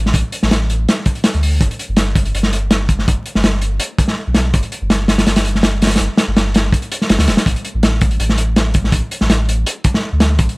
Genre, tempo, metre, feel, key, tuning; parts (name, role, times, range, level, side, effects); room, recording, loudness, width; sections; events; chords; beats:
drum and bass, jungle; 164 BPM; 4/4; swing 54% on 16ths; A4 = 438 Hz
saturated sub bass; bass; 0.0-10.5 s; D1 to D2; -17 LUFS; equal; tube saturation
crunchy breakbeat drum kit; drums; 0.1-10.6 s; hi-hat, kick drum, snare drum; -14 LUFS; equal
little or no reverb; vinyl crackle; -13 LUFS; side -27 dB against mid
0.0-10.6 A section
| 0.15 0.51 0.88 1.24 | 1.61 1.98 2.34 2.71 | 3.07 3.44 3.81 4.17 | 4.54 4.90 5.27 5.63 | 6.00 6.37 6.73 7.10 | 7.46 7.83 8.20 8.56 | 8.93 9.29 9.66 10.03 | 10.39